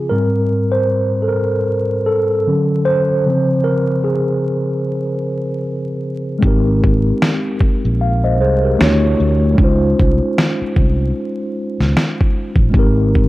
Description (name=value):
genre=lo-fi hip hop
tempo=76 BPM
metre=4/4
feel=swing 58% on 16ths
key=Ab major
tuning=A4 = 441 Hz
part: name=mellow tine electric piano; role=accompaniment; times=0.0-13.3 s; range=Ab2 to F5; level=-16 LUFS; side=equal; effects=medium stereo tremolo, cassette tape
part: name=fretless electric bass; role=bass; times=6.4-13.3 s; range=Ab1 to D2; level=-16 LUFS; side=equal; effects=none
part: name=dusty soul sampler-style drum kit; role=drums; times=6.4-13.3 s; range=kick drum, snare drum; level=-15 LUFS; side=equal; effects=overdrive
room=light reverb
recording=vinyl crackle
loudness=-14 LUFS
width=side -17 dB against mid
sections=0.0-6.4 A section; 6.4-13.3 B section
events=tine electric piano solo 0.0-6.4; filter sweep on tine electric piano 0.0-6.4; hi-hats muted 6.4-13.3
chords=0.1 Abmaj9; 2.5 Dmaj7; 3.3 Dbmaj7; 6.4 Abmaj9; 8.8 Dmaj7; 9.6 Dbmaj7; 12.7 Abmaj9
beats=| 0.11 0.90 1.69 2.48 | 3.27 4.06 4.85 5.64 | 6.43 7.22 8.01 8.80 | 9.59 10.38 11.16 11.95 | 12.74